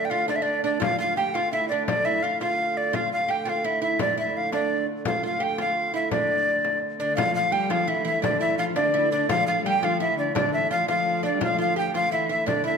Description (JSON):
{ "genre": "medieval dance", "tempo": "113 BPM (dotted quarters)", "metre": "6/8", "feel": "straight", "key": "D minor", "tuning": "A4 = 439 Hz", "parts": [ { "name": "breathy tenor recorder", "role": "melody", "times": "0.0-12.8 s", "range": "D5 to G5", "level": "-23 LUFS", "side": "equal", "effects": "none" }, { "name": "oud", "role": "second line", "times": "0.0-12.8 s", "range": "D4 to G4", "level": "-30 LUFS", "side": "right 6 dB", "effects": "none" }, { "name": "dark hurdy-gurdy", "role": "drone", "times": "0.0-12.8 s", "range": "D3 to A3", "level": "-34 LUFS", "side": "equal", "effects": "none" }, { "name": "frame drum", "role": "percussion", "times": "0.1-12.7 s", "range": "none", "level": "-32 LUFS", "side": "left 5 dB", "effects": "none" }, { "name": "dark viola da gamba", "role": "second line", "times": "7.0-12.8 s", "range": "D3 to G3", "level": "-30 LUFS", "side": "left 8 dB", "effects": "none" } ], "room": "wet recital hall reverb, RT60 1.4 s", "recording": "none", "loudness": "-22 LUFS", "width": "side -6 dB against mid", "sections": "0.0-7.2 A section; 7.2-12.8 A section", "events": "none", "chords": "none", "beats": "0.28 | 0.81 1.35 | 1.88 2.41 | 2.94 3.47 | 4.00 4.53 | 5.06 5.59 | 6.12 6.65 | 7.18 7.71 | 8.24 8.77 | 9.30 9.83 | 10.36 10.89 | 11.42 11.95 | 12.48" }